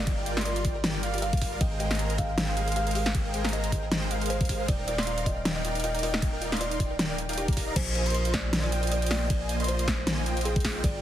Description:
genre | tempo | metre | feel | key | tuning
future bass | 156 BPM | 4/4 | swing 56% on 16ths, half-time | unclear | A4 = 441 Hz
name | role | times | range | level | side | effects
kalimba | melody | 0.0-11.0 s | G4 to F5 | -34 LUFS | right 1 dB | sidechain pumping, digital delay
airy dreamy lead | arpeggios | 0.0-11.0 s | F5 to C6 | -40 LUFS | equal | chorus, sidechain pumping
supersaw chords | riff | 0.0-11.0 s | G3 to C6 | -33 LUFS | right 1 dB | lush chorus, sidechain pumping
long sustained 808-style bass | bass | 0.0-11.0 s | Eb1 to Bb1 | -31 LUFS | equal | sidechain pumping
wide unison pluck | arpeggios | 0.1-7.7 s | F4 to Ab5 | -43 LUFS | left 2 dB | none
dubstep drum kit | drums | 0.1-10.9 s | crash cymbal, hi-hat, ride cymbal, snare drum | -31 LUFS | equal | overdrive
electronic kick drum | drums | 0.1-10.9 s | none | -28 LUFS | equal | overdrive
room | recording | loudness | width
light reverb, digital ambience | heavily compressed radio sound, multiband compression | -25 LUFS | side -12 dB against mid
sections
0.0-7.8 A section; 7.8-11.0 A section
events
drop 0.0-7.8, 7.8-11.0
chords
0.0 Gm7; 1.6 Abmaj9; 4.7 Ebmaj9; 7.8 Bb9sus4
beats
| 0.07 0.45 0.84 1.22 | 1.61 1.99 2.38 2.76 | 3.15 3.53 3.92 4.30 | 4.68 5.07 5.45 5.84 | 6.22 6.61 6.99 7.38 | 7.76 8.15 8.53 8.91 | 9.30 9.68 10.07 10.45 | 10.84

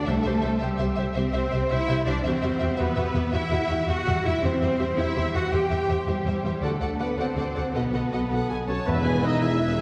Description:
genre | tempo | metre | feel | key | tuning
cinematic, heroic adventure film score | 110 BPM (dotted quarters) | 12/8 | straight | C lydian | A4 = 439 Hz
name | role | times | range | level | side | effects
warm studio violin section | melody | 0.0-9.8 s | G4 to G5 | -34 LUFS | equal | none
concert harp | arpeggios | 0.0-9.8 s | B2 to E6 | -36 LUFS | equal | none
rich symphonic cello section | bass | 0.0-9.8 s | E2 to G4 | -30 LUFS | equal | none
warm symphonic violin section | second line | 0.1-9.8 s | B4 to A5 | -36 LUFS | equal | none
warm symphonic viola section | accompaniment | 0.1-9.8 s | F#4 to G#5 | -35 LUFS | equal | none
warm studio double bass section | bass | 0.1-9.8 s | E1 to E2 | -31 LUFS | equal | none
timpani | percussion | 0.1-0.6, 8.9-9.4 s | E2 to C3 | -34 LUFS | equal | none
clear oboe | second line | 8.7-9.8 s | B4 to E5 | -38 LUFS | equal | none
hollow concert flute | second line | 8.7-9.8 s | B4 to E5 | -38 LUFS | equal | none
dark French horn section | sustained chords | 8.7-9.8 s | B3 to E4 | -29 LUFS | equal | none
mellow tuba | bass | 8.9-9.8 s | E1 | -33 LUFS | equal | none
tam-tam | percussion | 8.9-9.8 s | none | -37 LUFS | equal | none
room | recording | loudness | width
wet scoring stage reverb, RT60 2.0 s | heard from further back in the room | -25 LUFS | mono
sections
0.0-8.9 A section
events
band accent 8.9-9.2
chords
0.1 C; 2.2 Emadd9; 4.4 C/E; 6.6 D; 7.7 B7; 8.9 E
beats
| 0.08 0.62 1.16 1.71 | 2.25 2.79 3.34 3.89 | 4.44 4.98 5.53 6.08 | 6.63 7.18 7.75 8.31 | 8.88 9.43

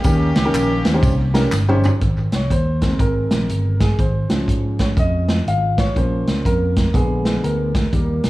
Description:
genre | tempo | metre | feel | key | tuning
uptempo gospel | 122 BPM | 4/4 | swing 63% on 8ths | Ab major | A4 = 445 Hz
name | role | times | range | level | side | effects
warm chamber string section | melody | 0.0-1.5 s | Bb3 to G4 | -24 LUFS | left 1 dB | tape echo
dark upright piano | accompaniment | 0.0-8.3 s | D3 to F5 | -22 LUFS | equal | none
fingered electric bass | bass | 0.0-8.3 s | G1 to Ab2 | -20 LUFS | equal | none
swinging big-band drum kit | drums | 0.0-8.3 s | hi-hat, kick drum, ride cymbal, snare drum, toms | -20 LUFS | equal | none
tambourine and handclaps | percussion | 0.0-1.9 s | none | -33 LUFS | equal | tape echo
room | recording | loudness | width
light reverb | echo-heavy mix, studio ambience | -16 LUFS | side -17 dB against mid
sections
0.0-2.0 A section; 2.0-8.3 B section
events
drum fill 1.5-2.0; upright piano solo 2.0-8.3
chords
0.0 Eb7; 2.0 Ab; 4.0 Db/Ab; 6.0 Bbm; 6.9 Bb7b9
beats
| 0.04 0.54 1.03 1.52 | 2.02 2.51 3.00 3.50 | 3.99 4.48 4.97 5.47 | 5.96 6.45 6.95 7.44 | 7.93

